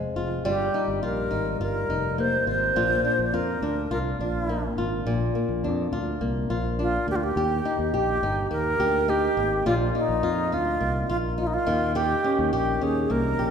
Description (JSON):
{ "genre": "pop", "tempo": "104 BPM", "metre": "4/4", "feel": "straight", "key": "Eb major", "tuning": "A4 = 440 Hz", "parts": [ { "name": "flamenco guitar", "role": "accompaniment", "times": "0.0-13.5 s", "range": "F2 to G4", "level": "-26 LUFS", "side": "left 2 dB", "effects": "none" }, { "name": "fingered electric bass", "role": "bass", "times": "0.0-13.5 s", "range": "F1 to F2", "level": "-29 LUFS", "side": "right 1 dB", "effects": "none" }, { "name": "bright alto flute", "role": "melody", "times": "0.5-13.5 s", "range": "Eb4 to C5", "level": "-26 LUFS", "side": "right 1 dB", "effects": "none" } ], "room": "wet recital hall reverb, RT60 1.6 s", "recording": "recorded in a church or concert hall", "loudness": "-22 LUFS", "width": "side -7 dB against mid", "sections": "0.0-5.1 A section; 5.1-7.4 B section; 7.4-13.5 C section", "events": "none", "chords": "0.4 Ebadd9/G; 2.8 Bb; 7.4 Eb; 9.7 Bbsus4; 11.7 Eb7" }